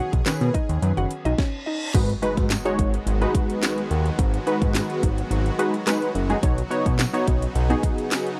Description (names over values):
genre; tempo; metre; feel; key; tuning
dance-pop; 107 BPM; 4/4; straight; unclear; A4 = 440 Hz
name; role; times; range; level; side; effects
mallet-like synth pluck; melody; 0.0-1.8 s; C#4 to F#5; -32 LUFS; equal; chorus, sidechain pumping, tape echo
supersaw pad; sustained chords; 0.0-8.4 s; C#3 to G#4; -34 LUFS; equal; sidechain pumping
fat analog bass; bass; 0.1-7.8 s; F#1 to B2; -26 LUFS; equal; sidechain pumping
house drum kit; drums; 0.1-8.4 s; crash cymbal, handclaps, hi-hat, kick drum, snare drum; -25 LUFS; equal; none
warm analog keys; accompaniment; 0.3-8.3 s; D#3 to C#5; -27 LUFS; equal; chorus, sidechain pumping
tambourine; percussion; 0.3-8.3 s; none; -39 LUFS; equal; none
reverse cymbal and impact; sound effects; 1.3-4.2 s; none; -38 LUFS; equal; none
room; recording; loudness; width
little or no reverb; dry, close 1970s-style studio recording; -23 LUFS; mono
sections
0.0-1.9 A section; 1.9-8.4 B section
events
reverse cymbal 1.3-1.9; stop 1.4-1.9; impact 1.9-4.2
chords
0.0 G#m7; 1.7 N.C.; 1.9 G#m7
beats
0.26 0.82 1.38 | 1.95 2.51 3.07 3.63 | 4.19 4.75 5.31 5.87 | 6.43 6.99 7.55 8.11